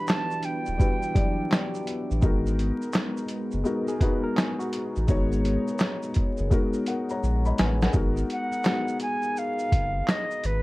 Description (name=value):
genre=lo-fi hip hop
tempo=84 BPM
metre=4/4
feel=swing 65% on 16ths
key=unclear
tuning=A4 = 440 Hz
part: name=bright reedy concert flute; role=melody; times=0.0-1.9, 8.3-10.6 s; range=B4 to B5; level=-30 LUFS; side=right 2 dB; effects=low-pass filter, tape echo
part: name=felt-muted upright piano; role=accompaniment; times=0.0-10.6 s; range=F#3 to B5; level=-29 LUFS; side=left 2 dB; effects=cassette tape, low-pass filter
part: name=dark analog pad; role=sustained chords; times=0.0-7.9 s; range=E3 to A#4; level=-34 LUFS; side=equal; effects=chorus, low-pass filter
part: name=lo-fi sampler-style drum kit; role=drums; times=0.1-10.6 s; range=handclaps, hi-hat, kick drum, shaker, snare drum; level=-25 LUFS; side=equal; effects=none
part: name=warm sub bass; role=bass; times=0.7-10.6 s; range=D1 to A#1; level=-26 LUFS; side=equal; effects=none
part: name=barky tine electric piano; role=second line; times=3.9-5.1 s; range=F#4 to B4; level=-35 LUFS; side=right 1 dB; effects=overdrive, fast stereo tremolo, low-pass filter, tape echo
room=light reverb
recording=dark, warm production, vinyl crackle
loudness=-23 LUFS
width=side -20 dB against mid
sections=0.0-7.9 A section; 7.9-10.6 B section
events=drum fill 6.5-7.9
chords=0.0 Em9; 2.2 G#m9